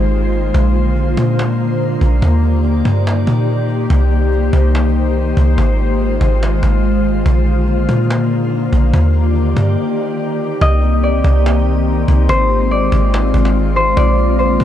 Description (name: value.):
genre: hip hop, atmospheric cloud-rap.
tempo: 143 BPM.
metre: 4/4.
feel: half-time.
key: C minor.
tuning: A4 = 439 Hz.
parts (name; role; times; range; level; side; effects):
glassy FM pad; sustained chords; 0.0-14.6 s; D3 to D5; -17 LUFS; left 2 dB; ensemble chorus, built-in reverb.
clean 808-style bass; bass; 0.0-14.6 s; Ab1 to Bb2; -14 LUFS; equal; none.
cajon; drums; 0.3-14.6 s; none; -25 LUFS; equal; none.
concert harp; melody; 10.6-14.6 s; C5 to Eb5; -18 LUFS; left 1 dB; tape echo.
room: light reverb, small room ambience.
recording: none.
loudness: -12 LUFS.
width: side -11 dB against mid.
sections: 0.0-10.6 A section; 10.6-14.6 B section.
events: break 9.8-10.6.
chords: 0.0 Ab6; 0.5 Bbadd9; 2.2 Ebmaj7; 3.9 Cm7; 5.6 Ab6; 7.3 Bbadd9; 8.9 Ebmaj7; 10.6 Cm7; 12.3 Ab6; 14.0 Bbadd9.